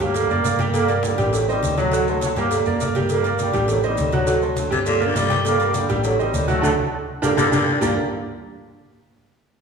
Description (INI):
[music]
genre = latin, salsa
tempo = 204 BPM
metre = 4/4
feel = straight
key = G harmonic minor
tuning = A4 = 440 Hz
[part]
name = mellow trombone section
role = melody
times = 0.0-8.0 s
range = D3 to Bb3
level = -23 LUFS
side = equal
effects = none
[part]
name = clear grand piano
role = accompaniment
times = 0.0-8.0 s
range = F#3 to G5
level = -23 LUFS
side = right 3 dB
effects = none
[part]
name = hollow-body short-scale fingered electric bass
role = bass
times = 0.0-8.0 s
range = F#1 to D2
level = -26 LUFS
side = equal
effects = none
[part]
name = congas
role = percussion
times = 0.0-7.9 s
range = none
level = -29 LUFS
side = left 2 dB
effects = none
[part]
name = cowbell and bongos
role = percussion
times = 0.0-7.9 s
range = none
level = -28 LUFS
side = right 3 dB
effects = none
[part]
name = maracas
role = percussion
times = 0.0-7.9 s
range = none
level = -36 LUFS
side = right 6 dB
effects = none
[part]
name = raspy baritone saxophone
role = second line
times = 4.7-7.9 s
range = Bb2 to G3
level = -23 LUFS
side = left 4 dB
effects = none
[sound]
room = wet recital hall reverb, RT60 1.6 s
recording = recorded in a church or concert hall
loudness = -18 LUFS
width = side -6 dB against mid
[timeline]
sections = 0.0-7.8 A section; 7.8-9.0 B section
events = band accent 6.6-7.8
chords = 0.1 Gm; 1.3 Am7b5; 1.9 D7; 2.5 Gm; 3.7 Am7b5; 4.3 D7; 4.9 Gm; 6.0 Am7b5; 6.6 D; 7.2 Gm; 7.8 G5